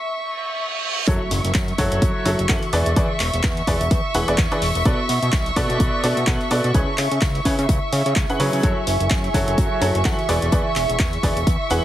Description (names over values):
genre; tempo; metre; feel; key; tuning
piano house; 127 BPM; 4/4; swing 57% on 16ths; F# minor; A4 = 440 Hz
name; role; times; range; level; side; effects
dark studio violin section; sustained chords; 0.0-11.8 s; E5 to C#6; -26 LUFS; equal; sidechain pumping
reverse cymbal and impact; sound effects; 0.3-3.0 s; none; -29 LUFS; right 3 dB; none
clear upright piano; riff; 1.1-11.8 s; C#3 to F#5; -23 LUFS; equal; sidechain pumping, ping-pong delay
fat analog bass; bass; 1.1-11.8 s; E1 to C#3; -23 LUFS; equal; tube saturation, sidechain pumping
electronic kick drum; drums; 1.1-11.6 s; none; -21 LUFS; equal; none
punchy analog drum machine; drums; 1.1-11.8 s; handclaps, hi-hat; -27 LUFS; equal; low-pass filter on hats, low-pass filter on snare, low-pass filter on room
swinging big-band drum kit; drums; 1.1-11.8 s; hi-hat, snare drum; -37 LUFS; left 4 dB; none
deep dark ambient pad; texture; 4.7-11.8 s; E5 to A5; -28 LUFS; right 2 dB; chorus, built-in reverb, sidechain pumping
room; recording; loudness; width
light reverb, studio reverb; heavily compressed radio sound; -18 LUFS; side -12 dB against mid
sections
0.0-1.1 A section; 1.1-11.8 B section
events
break 0.0-1.1; reverse cymbal 0.3-1.1; drop 1.1-11.8; impact 1.1-3.0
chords
0.0 C#m; 1.1 F#m7; 2.7 E7; 4.9 Bm7; 6.7 C#m7; 8.6 F#m7; 10.3 E7